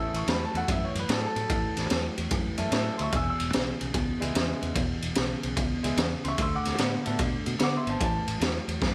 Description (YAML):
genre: electric blues shuffle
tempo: 148 BPM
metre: 4/4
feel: swing 67% on 8ths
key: A major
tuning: A4 = 439 Hz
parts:
  - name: clear baby grand piano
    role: accompaniment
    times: 0.0-8.4 s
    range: G#3 to E6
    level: -35 LUFS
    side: equal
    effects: none
  - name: electric guitar through a small old amp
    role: riff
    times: 0.0-8.9 s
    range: E2 to B3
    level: -35 LUFS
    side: equal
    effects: none
  - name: fingered electric bass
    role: bass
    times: 0.0-8.9 s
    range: E1 to D3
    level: -36 LUFS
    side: equal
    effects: none
  - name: raw garage drum kit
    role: drums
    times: 0.1-8.9 s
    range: kick drum, ride cymbal, snare drum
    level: -31 LUFS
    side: equal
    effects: none
room: light reverb, studio reverb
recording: none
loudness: -28 LUFS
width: mono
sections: 0.0-8.9 A section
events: none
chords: 0.0 A; 3.1 E; 6.4 D; 8.0 A5